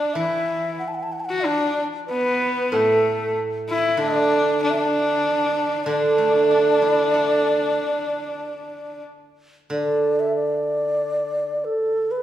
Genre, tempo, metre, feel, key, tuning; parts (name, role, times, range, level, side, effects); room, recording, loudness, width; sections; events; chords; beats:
chinese traditional, Chinese chamber ensemble; 94 BPM; 4/4; rubato; D gong mode; A4 = 440 Hz
mellow low xiao; melody; 0.0-12.2 s; A4 to A5; -23 LUFS; equal
clear horsehead fiddle; second line; 0.0-9.0 s; A3 to F#4; -24 LUFS; left 2 dB
steel-string zither; accompaniment; 0.2-11.6 s; A2 to A4; -22 LUFS; right 3 dB
wet recital hall reverb, RT60 1.4 s; heard from further back in the room; -19 LUFS; side -12 dB against mid
0.0-9.7 A section; 9.7-12.2 B section
0.16 0.81 1.46 | 2.10 2.73 3.37 4.00 | 4.63 5.25 5.87 6.50 | 7.13 7.76 8.40 9.06 | 9.72 10.37 11.01 11.64